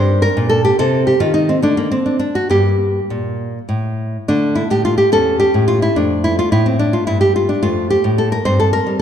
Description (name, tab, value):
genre	classical, baroque-style dance for nylon-string guitar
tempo	71 BPM (dotted quarters)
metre	6/8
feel	rubato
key	G minor, D minor from 4.3 s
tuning	A4 = 440 Hz
part	nylon-string guitar	solo	0.0-9.0 s	E2 to C5	-13 LUFS	equal	none
room	wet concert hall reverb, RT60 1.9 s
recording	dark, warm production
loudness	-13 LUFS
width	side -9 dB against mid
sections	0.0-4.3 A section; 4.3-9.0 A section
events	none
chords	0.0 Gm; 0.8 Cm; 1.6 D5; 2.5 Gm; 4.3 D5; 5.1 A/E; 6.0 Fmaj13; 7.6 F; 8.4 C5/G